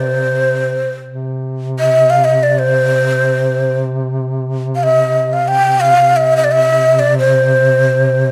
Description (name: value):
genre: Arabic maqam ensemble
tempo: free time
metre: none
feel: none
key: C maqam rast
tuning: A4 = 440 Hz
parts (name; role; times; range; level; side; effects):
- breathy mellow ney; melody; 0.0-8.3 s; C5 to G5; -14 LUFS; equal; none
- warm duduk; drone; 0.0-8.3 s; C3; -20 LUFS; equal; none
room: moderate concert hall reverb, RT60 2.0 s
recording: dark, warm production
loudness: -13 LUFS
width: mono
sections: 0.0-8.3 A section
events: none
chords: none